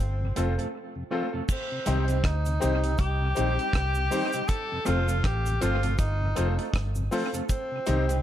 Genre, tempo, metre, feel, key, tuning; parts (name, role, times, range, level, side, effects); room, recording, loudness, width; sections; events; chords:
roots reggae; 80 BPM; 4/4; swing 58% on 16ths; C dorian; A4 = 442 Hz
clear tenor saxophone; melody; 0.0-8.2 s; C4 to A4; -31 LUFS; equal; tape echo
vintage muted fingered electric bass; bass; 0.0-8.2 s; F1 to D2; -26 LUFS; equal
mellow tonewheel organ; accompaniment; 0.2-8.2 s; F2 to C4; -37 LUFS; left 2 dB; chorus vibrato, slow rotary speaker
mellow electric guitar; accompaniment; 0.4-8.2 s; G3 to A4; -34 LUFS; right 3 dB; tape echo
bright concert grand piano; stabs; 0.4-8.0 s; C4 to C5; -33 LUFS; left 5 dB
deep reggae drum kit; drums; 0.4-8.2 s; crash cymbal, hi-hat, kick drum, rim click; -30 LUFS; equal; analog delay
cabasa; percussion; 0.4-8.2 s; -43 LUFS; right 1 dB
light reverb, studio ambience; echo-heavy mix; -24 LUFS; side -11 dB against mid
0.0-1.5 A section; 1.5-8.2 B section
break 0.7-1.5
0.0 F; 1.5 Cm; 4.5 F; 7.5 Cm